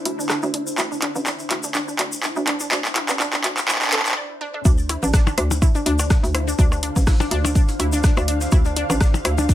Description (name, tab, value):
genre	minimal techno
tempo	124 BPM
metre	4/4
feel	swing 55% on 16ths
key	D minor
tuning	A4 = 440 Hz
part	bubbling stepped-filter texture	texture	0.0-9.5 s	E4 to G4	-38 LUFS	left 2 dB	none
part	granular cloud pad	texture	0.0-9.5 s	D4 to F5	-30 LUFS	right 1 dB	built-in reverb, sidechain pumping
part	resonant blip pluck	riff	0.1-9.5 s	D4 to D5	-28 LUFS	left 1 dB	chorus, sidechain pumping, ping-pong delay
part	hollow knocking FM bass	bass	0.1-9.5 s	A1 to D2	-24 LUFS	equal	sidechain pumping, high-pass filter
part	punchy analog drum machine	drums	0.1-9.4 s	handclaps, hi-hat, rim click	-22 LUFS	equal	none
part	egg shaker	percussion	0.2-9.5 s	none	-31 LUFS	left 2 dB	none
part	dusty soul sampler-style drum kit	drums	4.7-9.5 s	hi-hat, shaker, snare drum	-35 LUFS	right 3 dB	high-pass filter on snare, low-pass filter on snare, sidechain pumping on perc, high-pass filter on perc, low-pass filter on perc, sidechain pumping on hats, high-pass filter on hats, low-pass filter on hats
part	electronic kick drum	drums	4.7-9.5 s	none	-16 LUFS	equal	none
part	electronic percussion blips and rim click	percussion	4.9-9.5 s	none	-26 LUFS	left 4 dB	digital delay
room	moderate studio reverb, RT60 0.6 s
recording	high-pass filter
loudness	-18 LUFS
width	side -13 dB against mid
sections	0.0-4.7 A section; 4.7-9.5 B section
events	build-up 0.0-4.7; drum fill 0.0-4.2; filter sweep on synth pluck 0.0-4.7; break 4.2-4.7; drop 4.7-9.5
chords	0.0 D5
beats	0.30 | 0.78 1.26 1.75 2.23 | 2.72 3.20 3.68 4.17 | 4.65 5.14 5.62 6.10 | 6.59 7.07 7.55 8.04 | 8.52 9.01 9.49